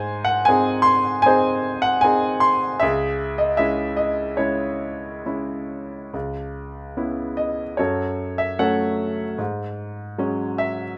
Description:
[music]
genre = classical, lyrical solo piano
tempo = 66-79 BPM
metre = 4/4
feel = rubato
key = C# minor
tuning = A4 = 440 Hz
[part]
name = clear concert grand piano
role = solo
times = 0.0-11.0 s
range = C#2 to B#5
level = -22 LUFS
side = equal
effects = none
[sound]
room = light reverb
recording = none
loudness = -22 LUFS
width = mono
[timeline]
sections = 0.0-6.1 A section; 6.1-11.0 B section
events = none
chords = 0.0 G#; 2.8 C#m; 6.1 C#m7; 7.8 F#m; 9.4 G#7sus4

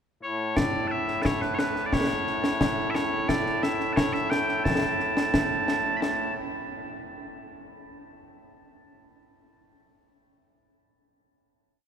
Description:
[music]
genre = scottish traditional, Scottish pipe music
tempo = 88 BPM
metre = 2/4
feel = straight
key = A major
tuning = A4 = 440 Hz
[part]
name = loud bright bagpipes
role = melody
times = 0.2-6.3 s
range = A2 to B5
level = -27 LUFS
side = equal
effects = none
[part]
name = concert snare drum and concert bass drum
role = drums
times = 0.6-6.3 s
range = none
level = -27 LUFS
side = left 1 dB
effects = none
[sound]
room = wet cathedral reverb, RT60 6.2 s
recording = recorded in a church or concert hall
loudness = -24 LUFS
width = side -8 dB against mid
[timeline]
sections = 0.0-0.6 pickup bar; 0.6-6.0 A section; 6.0-7.4 final note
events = none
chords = none

